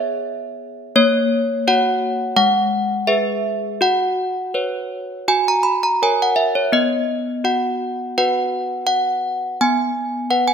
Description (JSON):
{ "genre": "classical, tune for handbells", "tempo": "84 BPM", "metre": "4/4", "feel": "straight", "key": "B major", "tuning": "A4 = 440 Hz", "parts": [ { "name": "desk bells", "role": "solo", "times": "0.0-10.5 s", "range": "G#3 to B5", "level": "-17 LUFS", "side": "equal", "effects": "none" } ], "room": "moderate concert hall reverb, RT60 1.8 s", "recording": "none", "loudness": "-16 LUFS", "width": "side -7 dB against mid", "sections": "0.0-10.5 A section", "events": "none", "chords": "0.0 C#m7/B; 1.0 F#/A#; 2.4 E/G#; 3.8 F#sus4; 5.3 F#; 6.8 B; 9.6 C#7(no3)/B (rootless)", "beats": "0.28 | 0.97 1.68 2.39 3.10 | 3.82 4.56 5.30 6.03 | 6.76 7.47 8.18 8.89 | 9.60 10.31" }